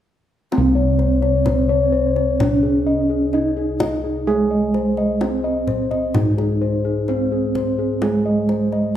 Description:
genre	Javanese gamelan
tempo	64 BPM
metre	4/4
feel	straight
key	unclear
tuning	A4 = 440 Hz
part	gamelan-type bronze metallophone	melody	0.5-9.0 s	Ab3 to Eb4	-20 LUFS	right 3 dB	none
part	gamelan-type bossed gongs	bass	0.5-9.0 s	C2 to Ab4	-22 LUFS	equal	none
part	kendang	percussion	0.5-8.8 s	none	-25 LUFS	left 1 dB	none
part	gamelan-type bossed gongs	arpeggios	0.8-9.0 s	Ab4 to Eb5	-22 LUFS	left 6 dB	slapback echo
room	moderate recital hall reverb, RT60 1.3 s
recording	none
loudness	-16 LUFS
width	side -11 dB against mid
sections	0.5-9.0 A section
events	none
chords	none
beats	| 0.52 1.46 2.40 3.33 | 4.27 5.21 6.14 7.08 | 8.02 8.96

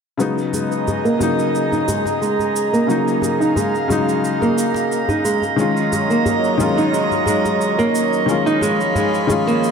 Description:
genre	organic downtempo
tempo	89 BPM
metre	4/4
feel	swing 53% on 16ths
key	G# dorian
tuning	A4 = 440 Hz
part	felt-muted upright piano	accompaniment	0.2-9.7 s	C#3 to E#4	-21 LUFS	left 5 dB	ping-pong delay
part	airy breathy pad	sustained chords	0.2-9.7 s	E#3 to B5	-22 LUFS	right 2 dB	chorus
part	nylon-string guitar	arpeggios	0.2-9.7 s	G#3 to D#4	-20 LUFS	right 2 dB	low-pass filter, ping-pong delay
part	cabasa	drums	0.2-9.7 s	none	-32 LUFS	right 4 dB	overdrive
part	drifting glass-harmonics texture	texture	0.6-9.7 s	D#5	-26 LUFS	right 4 dB	chorus, built-in reverb
part	djembe	percussion	0.5-9.4 s	none	-27 LUFS	equal	none
room	moderate echo chamber reverb, RT60 2.1 s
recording	none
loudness	-16 LUFS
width	side -6 dB against mid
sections	0.2-9.7 A section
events	filter sweep on nylon-string guitar 0.2-9.7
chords	0.2 G#madd9; 5.6 F#6; 8.3 C#7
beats	| 0.19 0.87 1.54 2.21 | 2.89 3.56 4.24 4.91 | 5.59 6.26 6.93 7.61 | 8.28 8.96 9.63

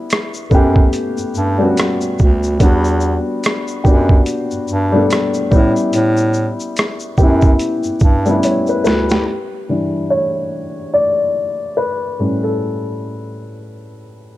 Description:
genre	lo-fi hip hop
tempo	72 BPM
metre	4/4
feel	swing 59% on 16ths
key	E dorian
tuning	A4 = 436 Hz
part	dark upright piano	accompaniment	0.0-14.4 s	A2 to D5	-17 LUFS	left 1 dB	cassette tape, low-pass filter
part	boom bap sampler-style drum kit	drums	0.1-9.3 s	hi-hat, kick drum, rim click, shaker, snare drum	-14 LUFS	right 1 dB	overdrive
part	clear bass clarinet	bass	0.5-9.2 s	D2 to A2	-17 LUFS	right 1 dB	none
room	light reverb, small room ambience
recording	none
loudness	-13 LUFS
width	side -15 dB against mid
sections	0.0-9.3 A section; 9.3-14.4 B section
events	drum fill 8.4-9.3; upright piano solo 9.3-14.4; filter sweep on upright piano 9.3-14.4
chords	0.0 A7; 2.6 Em9; 5.5 A7; 9.3 Em7; 12.2 A7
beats	0.10 0.93 1.77 | 2.60 3.43 4.27 5.10 | 5.93 6.77 7.60 8.43 | 9.27 10.10 10.93 11.77 | 12.60 13.43 14.27

